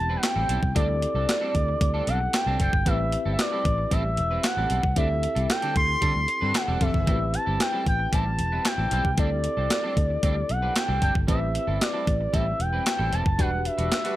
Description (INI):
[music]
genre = early-eighties boogie funk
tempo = 114 BPM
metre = 4/4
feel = straight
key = unclear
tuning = A4 = 442 Hz
[part]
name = expressive synth lead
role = melody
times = 0.0-14.2 s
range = D5 to C6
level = -27 LUFS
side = equal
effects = chorus, slapback echo
[part]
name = tine electric piano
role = accompaniment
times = 0.0-14.2 s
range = B3 to B4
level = -35 LUFS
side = left 2 dB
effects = medium stereo tremolo
[part]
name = vintage muted fingered electric bass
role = bass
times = 0.0-13.9 s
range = E1 to D3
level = -27 LUFS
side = equal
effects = none
[part]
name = semi-hollow electric guitar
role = riff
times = 0.1-14.2 s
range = G3 to B4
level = -34 LUFS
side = right 3 dB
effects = analog chorus
[part]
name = clean 12-bit digital drum machine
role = drums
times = 0.2-14.2 s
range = handclaps, hi-hat, kick drum, snare drum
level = -26 LUFS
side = equal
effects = overdrive
[part]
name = analog synth brass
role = second line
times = 5.6-7.1, 14.0-14.2 s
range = D3 to B4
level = -33 LUFS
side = left 1 dB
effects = chorus
[sound]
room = digital ambience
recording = none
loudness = -22 LUFS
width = side -15 dB against mid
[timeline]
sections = 0.0-14.2 A section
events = band accent 5.0-7.1, 13.4-14.2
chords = 0.0 Am7; 0.8 D7sus4; 2.9 Am7; 5.0 D7sus4; 7.1 Am7; 9.2 D7sus4; 11.3 Am7; 13.4 Em9